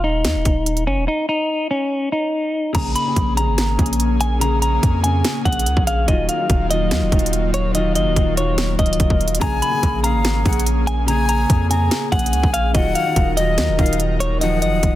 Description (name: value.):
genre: hip hop, trap.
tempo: 144 BPM.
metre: 4/4.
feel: half-time.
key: unclear.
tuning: A4 = 440 Hz.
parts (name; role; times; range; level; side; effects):
clean electric guitar; melody; 0.0-15.0 s; Db4 to Cb6; -21 LUFS; left 1 dB; vibrato effect, low-pass filter, digital delay.
long sustained 808-style bass; bass; 0.0-15.0 s; Db1 to F2; -20 LUFS; equal; none.
trap drum kit; drums; 0.2-14.9 s; crash cymbal, hi-hat, kick drum, snare drum; -19 LUFS; equal; none.
dark grand piano; accompaniment; 2.7-15.0 s; Db3 to Ab4; -24 LUFS; left 1 dB; low-pass filter.
airy breathy pad; sustained chords; 2.7-15.0 s; Eb3 to Bb4; -27 LUFS; equal; chorus.
breathy jazz flute; second line; 9.4-15.0 s; Eb5 to Bb5; -26 LUFS; left 6 dB; digital delay.
room: digital ambience.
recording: dense, heavily limited modern master.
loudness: -16 LUFS.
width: side -14 dB against mid.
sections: 0.0-2.7 A section; 2.7-15.0 B section.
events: break 1.1-2.7.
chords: 0.0 N.C.; 2.7 Bbm7; 6.1 Ebmadd9; 9.4 Bbm7; 12.7 Ebmadd9.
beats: 0.25 0.66 | 1.08 1.50 1.91 2.33 | 2.75 3.16 3.58 4.00 | 4.41 4.83 5.25 5.66 | 6.08 6.50 6.91 7.33 | 7.75 8.16 8.58 9.00 | 9.41 9.83 10.25 10.66 | 11.08 11.50 11.91 12.33 | 12.75 13.16 13.58 14.00 | 14.41 14.83.